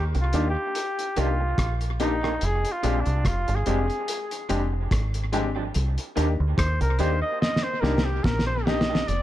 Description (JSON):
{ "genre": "lovers rock reggae", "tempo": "72 BPM", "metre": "4/4", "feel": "swing 55% on 16ths", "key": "unclear", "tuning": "A4 = 440 Hz", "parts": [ { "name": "clear flugelhorn", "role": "melody", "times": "0.0-9.2 s", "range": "D4 to Eb5", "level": "-28 LUFS", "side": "equal", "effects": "tape echo" }, { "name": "deep dub fingered electric bass", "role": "bass", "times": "0.0-9.2 s", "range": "F1 to Eb2", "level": "-25 LUFS", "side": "equal", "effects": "none" }, { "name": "electric guitar through a small old amp", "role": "stabs", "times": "0.1-9.0 s", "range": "Eb3 to G4", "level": "-34 LUFS", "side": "right 6 dB", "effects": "wide subtle chorus, tape echo" }, { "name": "cloth-damped thuddy drum kit", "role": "drums", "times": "0.1-9.2 s", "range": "hi-hat, kick drum, rim click, snare drum", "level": "-28 LUFS", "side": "equal", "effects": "tape echo" }, { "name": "warm baby grand piano", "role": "accompaniment", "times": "0.3-8.8 s", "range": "Ab3 to G4", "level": "-31 LUFS", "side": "left 5 dB", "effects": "none" } ], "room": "light reverb, studio reverb", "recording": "none", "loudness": "-22 LUFS", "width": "side -13 dB against mid", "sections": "0.0-9.1 A section", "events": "flugelhorn solo 0.0-9.1; drum fill 7.4-9.1", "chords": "0.0 Cm9; 2.4 Fm69; 5.7 Cm9" }